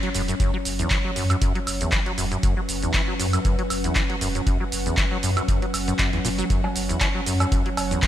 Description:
acid house; 118 BPM; 4/4; swing 54% on 16ths; A4 = 441 Hz
warbly tape-like pad; sustained chords; 0.0-8.1 s; F#3 to C#5; -29 LUFS; right 1 dB; chorus, built-in reverb, sidechain pumping
acid bass, saw; riff; 0.0-8.1 s; E2 to F#3; -28 LUFS; equal; analog chorus, sidechain pumping, ping-pong delay
punchy analog drum machine; drums; 0.0-8.1 s; cowbell, handclaps, hi-hat, shaker, woodblock; -26 LUFS; right 1 dB
dark studio string section; texture; 0.0-8.1 s; C#4 to F#5; -39 LUFS; left 1 dB; sidechain pumping
warm sub bass; bass; 0.1-8.0 s; E1 to F#2; -27 LUFS; equal; sidechain pumping
electronic kick drum; drums; 0.4-8.1 s; -24 LUFS; equal
light reverb, digital ambience; bright 1980s-style digital production; -20 LUFS; side -12 dB against mid
0.0-8.1 A section
fade-in on string section 0.0-8.1
0.0 F#5

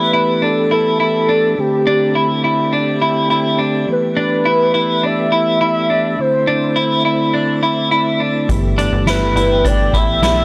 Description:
dream pop; 104 BPM; 4/4; straight; G major; A4 = 440 Hz
warm velvety synth lead; melody; 0.0-10.4 s; G4 to E5; -21 LUFS; equal; chorus
percussive tonewheel organ; sustained chords; 0.0-10.4 s; D3 to G4; -22 LUFS; equal; chorus vibrato, slow rotary speaker
semi-hollow electric guitar; arpeggios; 0.0-10.4 s; D4 to E4; -19 LUFS; equal; analog chorus, analog delay
plucky analog bass; bass; 8.5-10.4 s; G1 to B1; -21 LUFS; equal
soft-mallet drum kit; drums; 8.5-10.4 s; hi-hat, kick drum, snare drum; -22 LUFS; equal
twinkling granular texture; texture; 9.4-10.3 s; G5; -34 LUFS; equal; built-in reverb, analog delay
light reverb, small room ambience; dry, gritty hardware recording; -15 LUFS; mono
0.0-10.4 A section
0.0 G69; 1.6 D7sus4; 3.9 G69; 6.2 C69; 8.5 G69

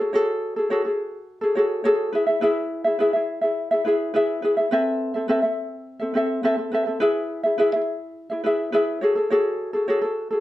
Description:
pop; 105 BPM; 4/4; straight; E major; A4 = 440 Hz
ukulele; solo; 0.0-10.4 s; C4 to E5; -20 LUFS; equal; slapback echo
light reverb; dark, warm production; -20 LUFS; side -15 dB against mid
0.0-10.4 A section
0.0 F#madd9; 2.1 E; 4.7 Amadd9; 7.0 E; 9.0 F#madd9

